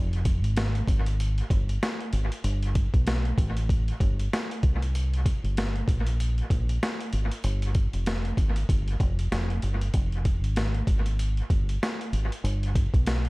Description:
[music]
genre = hip hop, jazz-hop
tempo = 96 BPM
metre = 4/4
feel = swing 58% on 16ths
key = F minor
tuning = A4 = 437 Hz
[part]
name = deep dub fingered electric bass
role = bass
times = 0.0-13.3 s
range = F1 to C2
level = -26 LUFS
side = equal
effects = none
[part]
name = boom bap sampler-style drum kit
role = drums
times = 0.1-13.3 s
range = hi-hat, kick drum, snare drum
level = -27 LUFS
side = equal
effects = dub echo
[sound]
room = little or no reverb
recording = echo-heavy mix, vinyl crackle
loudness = -24 LUFS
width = side -24 dB against mid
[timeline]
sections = 0.0-9.9 A section; 9.9-13.3 B section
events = none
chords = none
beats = 0.57 1.19 1.82 | 2.44 3.07 3.69 4.32 | 4.94 5.57 6.19 6.82 | 7.44 8.07 8.69 9.32 | 9.94 10.57 11.19 11.82 | 12.44 13.07

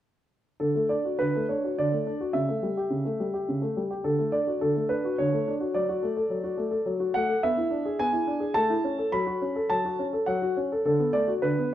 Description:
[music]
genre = classical-period piano sonatina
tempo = 106 BPM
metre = 3/4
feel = rubato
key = D major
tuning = A4 = 441 Hz
[part]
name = warm grand piano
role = solo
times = 0.6-11.7 s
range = C#3 to B5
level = -24 LUFS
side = equal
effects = none
[sound]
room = moderate recital hall reverb, RT60 1.4 s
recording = dark, warm production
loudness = -24 LUFS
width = side -12 dB against mid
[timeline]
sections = 0.6-11.7 A section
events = none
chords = 0.6 D; 2.4 A7/C#; 4.1 D; 5.8 D/F#; 7.4 E7/B; 8.6 A; 9.1 F#m; 10.9 Bm7/D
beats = | 0.61 1.19 1.77 | 2.35 2.92 3.49 | 4.06 4.62 5.19 | 5.75 6.31 6.87 | 7.43 8.00 8.57 | 9.13 9.70 10.28 | 10.85 11.43

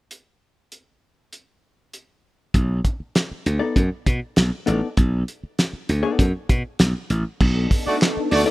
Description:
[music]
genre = funk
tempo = 99 BPM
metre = 4/4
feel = straight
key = unclear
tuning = A4 = 439 Hz
[part]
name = cloth-damped thuddy drum kit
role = drums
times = 0.1-8.5 s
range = crash cymbal, handclaps, hi-hat, kick drum, snare drum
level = -19 LUFS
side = equal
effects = none
[part]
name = slap bass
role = bass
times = 2.5-8.4 s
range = A1 to B2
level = -21 LUFS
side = equal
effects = none
[part]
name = hollow-body jazz guitar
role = accompaniment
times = 3.6-8.5 s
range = B3 to D5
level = -23 LUFS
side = left 4 dB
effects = none
[part]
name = soft string machine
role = sustained chords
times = 7.4-8.5 s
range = B3 to A4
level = -25 LUFS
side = left 1 dB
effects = ensemble chorus
[part]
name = warm horn section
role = second line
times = 7.9-8.4 s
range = A3 to D5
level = -22 LUFS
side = right 2 dB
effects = tape echo
[sound]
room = studio reverb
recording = rough home demo mix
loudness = -19 LUFS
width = side -18 dB against mid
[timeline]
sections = 0.1-2.5 A section; 2.5-7.4 B section; 7.4-8.5 C section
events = none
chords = 0.1 N.C.; 2.5 B7#9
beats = | 0.10 0.71 1.32 1.93 | 2.54 3.15 3.76 4.37 | 4.98 5.59 6.19 6.80 | 7.41 8.01

